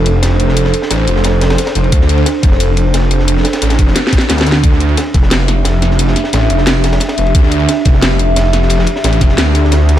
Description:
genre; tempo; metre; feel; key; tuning
dark technical drum and bass; 177 BPM; 4/4; straight; D minor; A4 = 442 Hz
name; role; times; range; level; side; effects
dark analog pad; sustained chords; 0.0-10.0 s; D4 to E5; -18 LUFS; right 2 dB; chorus, phaser, sidechain pumping
wide detuned saw bass; bass; 0.0-10.0 s; F1 to D2; -12 LUFS; equal; chorus, tube saturation
crunchy breakbeat drum kit; drums; 0.1-10.0 s; ride cymbal, snare drum; -22 LUFS; equal; high-pass filter on cymbals, high-pass filter on snare, high-pass filter on room
drum and bass drum kit; drums; 0.1-10.0 s; hi-hat, snare drum; -16 LUFS; equal; none
electronic kick drum; drums; 1.9-5.2, 7.3-9.3 s; none; -10 LUFS; equal; none
room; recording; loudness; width
light reverb, digital ambience; none; -9 LUFS; side -12 dB against mid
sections
0.0-10.0 A section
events
drum fill 4.0-4.6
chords
0.0 Dm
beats
0.23 | 0.57 0.91 1.25 1.58 | 1.92 2.26 2.60 2.94 | 3.28 3.62 3.96 4.30 | 4.63 4.97 5.31 5.65 | 5.99 6.33 6.67 7.01 | 7.35 7.69 8.03 8.36 | 8.70 9.04 9.38 9.72

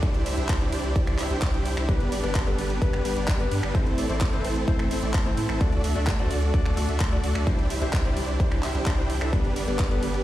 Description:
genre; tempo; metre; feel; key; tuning
EDM, festival progressive house; 129 BPM; 4/4; straight; G major; A4 = 436 Hz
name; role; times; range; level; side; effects
supersaw chords; riff; 0.0-10.2 s; G3 to G5; -29 LUFS; right 1 dB; vintage 12-bit sampler grit, sidechain pumping, ping-pong delay
saturated sub bass; bass; 0.0-10.2 s; G1 to A2; -29 LUFS; equal; sidechain pumping
electronic kick drum; drums; 0.0-9.9 s; none; -24 LUFS; equal; none
pop drum kit; drums; 0.0-10.2 s; finger snaps, handclaps, hi-hat, ride cymbal; -34 LUFS; equal; overdrive
felt-muted upright piano; accompaniment; 1.9-10.0 s; G3 to D5; -32 LUFS; left 5 dB; sidechain pumping, ping-pong delay
room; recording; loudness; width
digital ambience; played on a big sound system in a bare room, stone room reverb; -22 LUFS; side -14 dB against mid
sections
0.0-10.2 A section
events
none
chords
0.0 Cadd9; 1.9 G; 3.7 Am; 5.6 D; 7.5 Cadd9; 9.3 G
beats
| 0.03 0.49 0.96 1.42 | 1.89 2.35 2.82 3.28 | 3.75 4.21 4.68 5.14 | 5.61 6.07 6.54 7.00 | 7.47 7.93 8.40 8.86 | 9.33 9.79

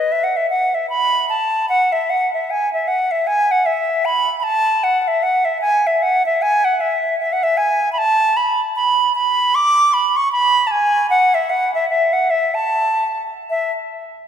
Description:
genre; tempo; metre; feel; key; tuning
celtic folk; 152 BPM; 4/4; swing 60% on 8ths; unclear; A4 = 440 Hz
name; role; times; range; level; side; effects
bright wooden flute; solo; 0.0-13.7 s; D#5 to D6; -15 LUFS; equal; none
room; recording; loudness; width
wet church reverb, RT60 3.2 s; recorded in a church or concert hall; -15 LUFS; side -8 dB against mid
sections
0.9-13.5 A section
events
none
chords
none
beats
0.12 0.51 | 0.90 1.30 1.69 2.08 | 2.48 2.87 3.27 3.66 | 4.05 4.45 4.84 5.23 | 5.62 6.02 6.41 6.80 | 7.20 7.59 7.99 8.38 | 8.77 9.16 9.56 9.95 | 10.35 10.74 11.13 11.53 | 11.92 12.31 12.71 13.10 | 13.49

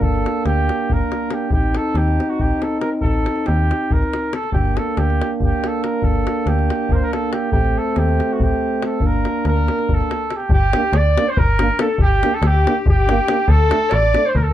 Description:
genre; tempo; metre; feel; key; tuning
balkan folk, Balkan brass band; 281 BPM (eighths); 7/8; straight; G minor; A4 = 441 Hz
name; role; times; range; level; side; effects
clear flugelhorn; melody; 0.0-14.5 s; F#4 to D5; -22 LUFS; right 1 dB; plate reverb
warm French horn; accompaniment; 0.0-14.2 s; C4 to Eb4; -26 LUFS; left 5 dB; none
warm euphonium; accompaniment; 0.0-14.2 s; A3 to C4; -24 LUFS; right 7 dB; none
metallic FM bass; bass; 0.0-14.5 s; G1 to Eb2; -18 LUFS; equal; none
davul; percussion; 0.0-14.5 s; none; -22 LUFS; left 2 dB; none
clear clarinet; second line; 10.5-14.5 s; G4 to D5; -24 LUFS; left 4 dB; none
room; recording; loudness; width
moderate small room reverb, RT60 0.5 s; dark, warm production; -16 LUFS; side -12 dB against mid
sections
0.0-10.5 A section; 10.5-14.5 B section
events
none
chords
0.0 Gm; 1.5 Adim; 4.5 Gm; 7.5 Adim; 9.0 Gm; 13.5 D5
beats
| 0.02 0.24 0.45 0.67 0.88 1.09 1.31 | 1.52 1.74 1.95 2.17 2.38 2.60 2.81 | 3.03 3.24 3.46 3.67 3.88 4.10 4.31 | 4.53 4.74 4.96 5.17 5.38 5.60 5.81 | 6.03 6.24 6.45 6.67 6.88 7.09 7.31 | 7.52 7.74 7.95 8.16 8.38 8.59 8.80 | 9.02 9.23 9.44 9.65 9.87 10.08 10.29 | 10.51 10.72 10.93 11.14 11.36 11.57 11.78 | 11.99 12.20 12.42 12.63 12.84 13.05 13.26 | 13.47 13.69 13.90 14.11 14.32

